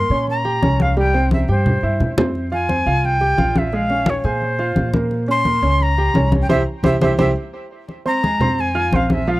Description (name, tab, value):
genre	latin, Cuban son and guajira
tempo	174 BPM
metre	4/4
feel	straight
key	F harmonic minor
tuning	A4 = 442 Hz
part	jazz flute	melody	0.0-9.4 s	C5 to C6	-21 LUFS	equal	tape echo
part	clear grand piano	arpeggios	0.0-9.4 s	F3 to F6	-22 LUFS	right 2 dB	none
part	upright bass	bass	0.0-9.4 s	Bb1 to Bb2	-20 LUFS	equal	none
part	congas	percussion	0.1-9.4 s	none	-21 LUFS	left 1 dB	none
room	little or no reverb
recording	dry, close 1970s-style studio recording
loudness	-15 LUFS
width	side -18 dB against mid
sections	0.0-7.9 A section; 7.9-9.4 A section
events	drum fill 1.3-2.4, 7.4-7.9; band accent 6.5-7.9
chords	0.0 Gdim; 1.0 C; 2.4 Fsus2; 3.7 Bbm7; 5.1 Gdim; 6.5 C; 7.9 Fm